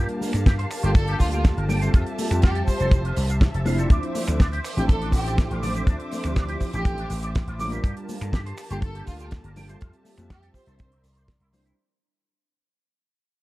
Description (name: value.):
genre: nu-disco, nu disco.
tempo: 122 BPM.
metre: 4/4.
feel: straight.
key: D minor.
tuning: A4 = 443 Hz.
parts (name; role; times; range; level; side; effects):
mellow synth brass; accompaniment; 0.0-11.8 s; F3 to E5; -31 LUFS; equal; chorus, sidechain pumping, slapback echo.
rich symphonic string section; sustained chords; 0.0-11.8 s; Bb3 to D6; -36 LUFS; left 1 dB; sidechain pumping.
electric guitar with an envelope filter; riff; 0.0-11.7 s; C4 to G5; -35 LUFS; right 1 dB; ensemble chorus.
vintage slap bass; bass; 0.0-11.7 s; F1 to G2; -26 LUFS; equal; none.
damped 70s drum kit; drums; 0.1-11.8 s; finger snaps, hi-hat, shaker, snare drum; -33 LUFS; right 1 dB; small room ambience.
congas and cabasa; percussion; 0.2-11.7 s; none; -33 LUFS; left 2 dB; none.
kick drum; drums; 0.5-11.4 s; none; -19 LUFS; equal; small room ambience.
rich chamber violin section; melody; 0.8-10.8 s; F4 to C5; -32 LUFS; equal; tape echo.
room: studio ambience.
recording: none.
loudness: -21 LUFS.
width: side -19 dB against mid.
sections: 0.0-11.8 A section.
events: drop 0.0-11.8; fade-out 3.9-11.8.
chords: 0.0 Gm9; 1.9 Fmaj9; 3.9 Dm9; 7.8 Gm9; 9.8 Fmaj9; 10.8 C9.